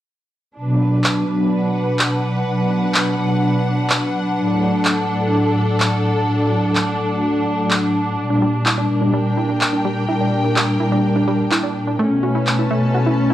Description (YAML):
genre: melodic techno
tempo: 126 BPM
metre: 4/4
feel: straight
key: unclear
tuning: A4 = 440 Hz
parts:
  - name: brassy analog pad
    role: stabs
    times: 0.6-13.3 s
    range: A2 to D4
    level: -18 LUFS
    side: equal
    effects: chorus, tremolo, tape echo
  - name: dark symphonic string section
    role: texture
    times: 0.6-13.3 s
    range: C#4 to A5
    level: -22 LUFS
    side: equal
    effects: none
  - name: electronic handclaps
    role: drums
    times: 1.0-12.6 s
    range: none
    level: -19 LUFS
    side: equal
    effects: none
  - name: wide unison pluck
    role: arpeggios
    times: 8.3-13.3 s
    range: G3 to F#4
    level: -24 LUFS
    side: right 2 dB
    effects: tape echo
room: light reverb, digital ambience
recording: dry, gritty hardware recording, transformer saturation, cassette tape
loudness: -16 LUFS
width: side -13 dB against mid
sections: 0.6-13.3 A section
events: none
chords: 0.6 Bm; 4.4 D; 8.2 Gm; 12.0 Aadd9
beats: | 0.56 1.04 1.52 1.99 | 2.47 2.94 3.42 3.90 | 4.37 4.85 5.33 5.80 | 6.28 6.75 7.23 7.71 | 8.18 8.66 9.13 9.61 | 10.09 10.56 11.04 11.52 | 11.99 12.47 12.94